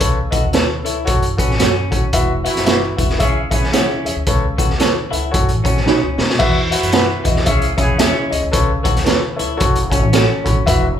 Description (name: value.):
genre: uptempo 1960s-style soul.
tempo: 112 BPM.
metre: 4/4.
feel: swing 60% on 8ths.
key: E major.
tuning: A4 = 441 Hz.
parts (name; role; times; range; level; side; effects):
warm grand piano; accompaniment; 0.0-11.0 s; B2 to C#6; -21 LUFS; left 2 dB; none.
upright bass; bass; 0.0-11.0 s; E1 to B2; -22 LUFS; equal; none.
raw garage drum kit; drums; 0.0-10.8 s; crash cymbal, hi-hat, kick drum, snare drum; -17 LUFS; equal; none.
electric guitar through a small old amp; riff; 0.3-10.6 s; C#4 to F#4; -25 LUFS; left 3 dB; none.
mellow electric guitar; stabs; 0.5-10.3 s; D#4 to C#5; -22 LUFS; right 4 dB; spring reverb.
clear horn section; second line; 2.5-8.4 s; E3 to C#5; -24 LUFS; equal; none.
room: light reverb.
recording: band playing live in one room.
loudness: -14 LUFS.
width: side -9 dB against mid.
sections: 0.0-6.4 A section; 6.4-11.0 A section.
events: grand piano fill 4.8-6.4, 9.1-10.7; drum fill 5.9-6.4.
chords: 0.0 Aadd9/C#; 1.1 F#m; 2.1 Esus2; 3.2 C#m; 4.3 Aadd9/C#; 5.3 F#m; 5.9 Badd9; 6.4 Esus2; 7.5 C#m; 8.5 Aadd9/C#; 9.6 F#m.